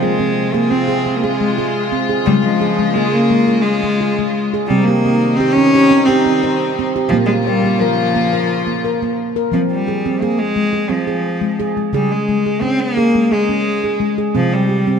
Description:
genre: world meditative, meditative tuned percussion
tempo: 174 BPM (eighths)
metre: 7/8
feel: straight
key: F minor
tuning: A4 = 440 Hz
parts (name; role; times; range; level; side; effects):
- clear cello; melody; 0.0-15.0 s; F3 to Db4; -16 LUFS; left 1 dB; diffuse ambient delay
- warm chamber string section; sustained chords; 0.0-9.5 s; C3 to F4; -21 LUFS; left 3 dB; none
- handpan; arpeggios; 0.0-15.0 s; Bb2 to C5; -17 LUFS; right 1 dB; none
room: wet echo chamber reverb, RT60 1.8 s, small room ambience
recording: none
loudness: -13 LUFS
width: side -6 dB against mid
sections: 0.0-9.5 A section; 9.5-15.0 B section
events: none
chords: 0.0 Fm; 2.3 Db; 4.7 Cm; 7.1 Bbm; 9.5 Fm; 11.9 Db5; 14.4 C5

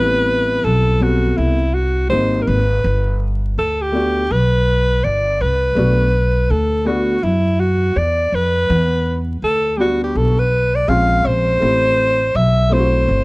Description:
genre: hip hop, jazz-hop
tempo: 82 BPM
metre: 4/4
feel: swing 62% on 16ths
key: unclear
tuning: A4 = 440 Hz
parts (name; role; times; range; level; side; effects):
- breathy alto saxophone; melody; 0.0-13.2 s; E4 to E#5; -17 LUFS; equal; none
- dark upright piano; accompaniment; 0.0-13.2 s; G3 to A4; -21 LUFS; left 1 dB; none
- upright bass; bass; 0.0-13.2 s; G1 to F#2; -17 LUFS; equal; none
room: studio reverb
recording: dry, close 1970s-style studio recording, vinyl crackle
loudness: -14 LUFS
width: side -24 dB against mid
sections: 0.0-13.2 A section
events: none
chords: 0.0 Am9; 2.1 G#maj9; 2.8 G; 5.8 Bm7; 8.7 Em7; 10.9 A#m9; 11.6 Am9

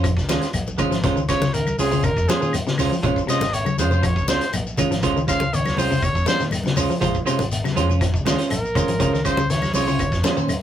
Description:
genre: afrobeat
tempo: 120 BPM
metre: 4/4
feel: straight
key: Bb minor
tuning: A4 = 440 Hz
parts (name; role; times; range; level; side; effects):
- electric guitar at the edge of break-up; arpeggios; 0.0-10.5 s; C3 to F3; -26 LUFS; left 4 dB; none
- semi-hollow electric guitar; stabs; 0.0-10.5 s; Ab3 to C5; -22 LUFS; right 4 dB; none
- hollow-body short-scale picked electric bass; bass; 0.0-10.5 s; Ab1 to Bb2; -25 LUFS; equal; none
- vintage drum kit; drums; 0.0-10.6 s; hi-hat, kick drum, snare drum; -27 LUFS; equal; none
- claves; percussion; 0.0-10.6 s; none; -33 LUFS; left 3 dB; none
- congas; percussion; 0.0-10.6 s; none; -29 LUFS; left 1 dB; none
- shekere; percussion; 0.1-10.6 s; none; -31 LUFS; left 3 dB; none
- bright trumpet; melody; 1.3-10.2 s; Ab4 to F5; -24 LUFS; left 1 dB; none
room: wet booth ambience, RT60 0.2 s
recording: rough rehearsal-room recording, warm saturation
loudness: -18 LUFS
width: side -10 dB against mid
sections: 0.0-10.6 A section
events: trumpet solo 0.0-10.6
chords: 0.0 Bbm9; 1.0 Dbmaj7; 3.0 Bbm9; 5.0 Dbmaj7; 7.0 Bbm9; 9.0 Dbmaj7

